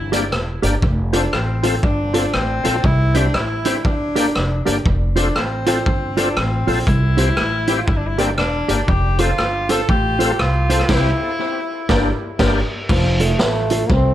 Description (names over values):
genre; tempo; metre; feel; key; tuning
ska; 119 BPM; 4/4; swing 61% on 8ths; F major; A4 = 440 Hz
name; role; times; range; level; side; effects
warm tenor saxophone; melody; 0.0-12.4 s; C4 to A4; -23 LUFS; left 1 dB; tape echo
upright bass; bass; 0.0-14.1 s; E1 to C2; -20 LUFS; equal; none
mellow electric guitar; accompaniment; 0.1-13.8 s; E4 to D5; -25 LUFS; right 4 dB; spring reverb, tape echo
overdriven tonewheel organ; stabs; 0.1-12.6 s; Bb3 to A4; -24 LUFS; left 3 dB; chorus vibrato, slow rotary speaker, tape echo
raw garage drum kit; drums; 0.1-14.0 s; crash cymbal, hi-hat, kick drum, rim click, snare drum; -21 LUFS; equal; tape echo
warm trombone; melody; 12.9-14.1 s; F3 to C4; -20 LUFS; right 1 dB; tape echo
room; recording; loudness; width
moderate studio reverb, RT60 0.8 s; none; -15 LUFS; side -12 dB against mid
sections
0.0-12.9 A section; 12.9-14.1 B section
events
band accent 10.9-12.9; trombone solo 12.9-14.1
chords
0.0 Gm; 0.8 F; 2.8 C; 3.8 Gm; 4.9 F; 6.9 C; 7.9 Gm; 8.9 F; 10.9 C; 11.9 Gm; 12.9 F